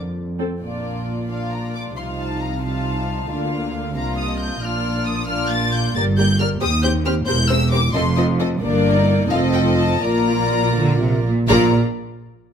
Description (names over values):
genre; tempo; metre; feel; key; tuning
quick classical-period movement for string orchestra; 81-92 BPM (dotted quarters); 6/8; rubato; Bb major; A4 = 440 Hz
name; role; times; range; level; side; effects
dark symphonic double bass section; bass; 0.0-11.7 s; E1 to F2; -22 LUFS; right 2 dB; none
dark symphonic viola section; accompaniment; 0.4-11.7 s; F3 to A4; -24 LUFS; equal; none
warm symphonic violin section; second line; 0.6-11.7 s; F4 to F5; -25 LUFS; left 4 dB; none
rich symphonic cello section; bass; 0.6-11.7 s; Eb2 to D3; -24 LUFS; right 2 dB; none
warm symphonic violin section; melody; 1.3-11.7 s; F5 to A6; -25 LUFS; left 4 dB; none
room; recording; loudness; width
moderate large studio reverb, RT60 1.2 s; none; -17 LUFS; side -8 dB against mid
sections
0.6-11.5 A section; 11.5-12.5 B section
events
none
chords
0.0 F; 0.6 Bb; 2.0 F7/C; 3.3 Bb/D; 4.6 Bb; 6.0 Gm; 6.6 Cm/Eb; 7.3 C7/E; 7.9 F7; 8.6 Gm; 9.3 F7; 10.0 Bb